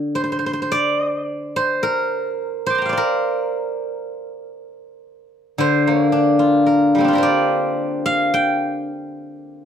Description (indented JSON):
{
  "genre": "chinese traditional, Chinese solo plucked strings",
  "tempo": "55 BPM",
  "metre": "2/4",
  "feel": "uneven beats, rubato",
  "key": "D jue mode",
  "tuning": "A4 = 440 Hz",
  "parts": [
    { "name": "steel-string zither", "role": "solo", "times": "0.0-9.7 s", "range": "D3 to D6", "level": "-17 LUFS", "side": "equal", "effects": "none" }
  ],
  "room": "moderate small room reverb, RT60 0.5 s",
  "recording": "none",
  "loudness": "-16 LUFS",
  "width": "side -8 dB against mid",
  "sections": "0.7-9.7 A section",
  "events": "none",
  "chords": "none",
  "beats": "| 0.69 1.83 | 2.93 3.99 | 5.06 6.12 | 7.20 8.31 | 9.45"
}